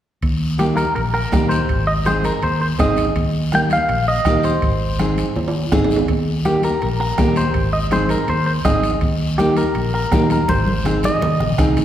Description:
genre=latin, cumbia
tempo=164 BPM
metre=4/4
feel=straight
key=Eb major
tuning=A4 = 440 Hz
part: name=fingered electric bass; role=bass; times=0.2-11.8 s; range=Ab1 to Eb2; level=-21 LUFS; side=equal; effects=none
part: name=bombo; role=percussion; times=0.2-11.8 s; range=none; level=-24 LUFS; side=right 1 dB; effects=none
part: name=congas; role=percussion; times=0.2-11.8 s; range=none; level=-26 LUFS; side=left 1 dB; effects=none
part: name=guiro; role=percussion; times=0.2-11.8 s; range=none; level=-34 LUFS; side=left 5 dB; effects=none
part: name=timbales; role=percussion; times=0.2-11.8 s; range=none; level=-30 LUFS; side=right 3 dB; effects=none
part: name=clean electric guitar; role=melody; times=0.6-11.6 s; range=G4 to G5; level=-20 LUFS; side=equal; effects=spring reverb
part: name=nylon-string guitar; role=accompaniment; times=0.6-11.8 s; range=Bb3 to Ab4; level=-22 LUFS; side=equal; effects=none
room=wet scoring stage reverb, RT60 1.6 s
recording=recorded in a church or concert hall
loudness=-15 LUFS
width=side -11 dB against mid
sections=0.2-11.8 A section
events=drum fill 5.4-6.1, 10.5-11.8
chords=0.2 Eb; 1.7 Ab; 3.2 Eb; 4.6 Ab; 6.1 Eb; 7.6 Ab; 9.0 Eb; 10.5 Ab

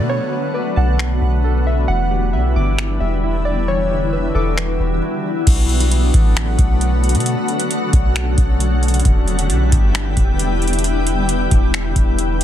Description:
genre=hip hop, atmospheric cloud-rap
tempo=134 BPM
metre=4/4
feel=half-time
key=B minor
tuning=A4 = 440 Hz
part: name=warbly dusty pluck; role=melody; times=0.0-5.4 s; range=A4 to F#5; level=-24 LUFS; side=left 1 dB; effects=chorus, ping-pong delay
part: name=shimmering ambient pad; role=sustained chords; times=0.0-12.4 s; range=C#3 to G4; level=-21 LUFS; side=left 2 dB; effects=chorus, built-in reverb, sidechain pumping
part: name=soft electric-piano-like synth keys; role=arpeggios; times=0.0-5.5 s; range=E3 to D6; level=-28 LUFS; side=right 4 dB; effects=chorus, ping-pong delay
part: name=soft 808-style bass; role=bass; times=0.0-12.4 s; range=E1 to B2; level=-18 LUFS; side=equal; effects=none
part: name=downlifter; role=sound effects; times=0.0-1.9 s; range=none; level=-39 LUFS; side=right 1 dB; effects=none
part: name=drifting glass-harmonics texture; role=texture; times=0.0-12.4 s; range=G3 to E5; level=-30 LUFS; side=left 2 dB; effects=chorus, built-in reverb
part: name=booming analog drum machine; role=drums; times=1.0-12.4 s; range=crash cymbal, finger snaps, hi-hat, kick drum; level=-16 LUFS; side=equal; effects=soft clipping on snare
room=digital ambience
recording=dense, heavily limited modern master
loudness=-14 LUFS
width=side -11 dB against mid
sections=0.0-5.5 A section; 5.5-12.4 B section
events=none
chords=0.0 Bm7; 1.9 Em7; 5.5 Bm7; 9.1 Em7

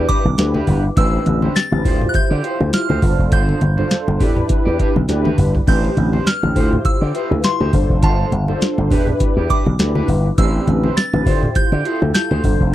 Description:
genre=early-eighties boogie funk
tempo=102 BPM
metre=4/4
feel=swing 56% on 16ths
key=unclear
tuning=A4 = 440 Hz
part: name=delicate synth tine bell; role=melody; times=0.0-12.7 s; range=A5 to A6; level=-24 LUFS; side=right 1 dB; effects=chorus, phaser
part: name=mellow synth brass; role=accompaniment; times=0.0-12.7 s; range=C4 to C5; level=-22 LUFS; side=equal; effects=chorus
part: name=electric guitar at the edge of break-up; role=riff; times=0.0-12.6 s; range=D4 to D5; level=-29 LUFS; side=right 5 dB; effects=lush chorus
part: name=slap bass with an envelope filter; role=bass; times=0.0-12.7 s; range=F1 to D3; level=-18 LUFS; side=equal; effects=none
part: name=booming analog drum machine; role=drums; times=0.1-12.7 s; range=crash cymbal, hi-hat, kick drum, snare drum, toms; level=-17 LUFS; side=equal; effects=none
part: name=congas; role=percussion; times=0.3-12.6 s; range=none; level=-23 LUFS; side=left 2 dB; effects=none
room=little or no reverb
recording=dry, close 1970s-style studio recording, lossy compression artefacts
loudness=-14 LUFS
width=side -14 dB against mid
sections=0.0-12.7 A section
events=drum fill 5.1-5.7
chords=0.0 Em7; 1.0 Am11; 1.9 Dm11; 3.0 G9sus4; 4.2 Em7; 5.7 Am11; 6.6 Dm11; 7.7 G9sus4; 8.9 Em7; 10.4 Am11; 11.3 Dm11

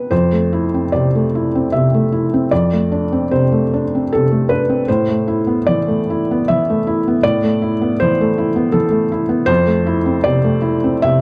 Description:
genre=neoclassical minimalist piano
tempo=77 BPM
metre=3/4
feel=rubato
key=unclear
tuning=A4 = 440 Hz
part: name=felt-muted upright piano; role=solo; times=0.0-11.2 s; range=F2 to E5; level=-16 LUFS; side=equal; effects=none
room=moderate studio reverb, RT60 0.7 s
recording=dark, warm production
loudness=-16 LUFS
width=mono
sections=0.1-11.2 A section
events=none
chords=0.1 Fmaj7; 2.5 Dm7/F; 4.9 Amadd9; 9.5 Fmaj7

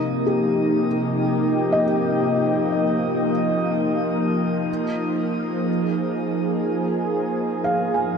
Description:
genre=ambient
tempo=61 BPM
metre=3/4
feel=straight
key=unclear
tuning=A4 = 441 Hz
part: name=warm analog pad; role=sustained chords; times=0.0-8.2 s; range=C3 to Ab4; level=-21 LUFS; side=equal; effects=chorus
part: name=felt-muted upright piano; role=arpeggios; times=0.0-8.2 s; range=Eb4 to Ab5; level=-25 LUFS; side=left 1 dB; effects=ping-pong delay
room=wet shimmer reverb, RT60 9.0 s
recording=none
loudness=-19 LUFS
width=side -6 dB against mid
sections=0.0-8.2 A section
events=none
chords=0.0 Cm7; 4.7 Bb5

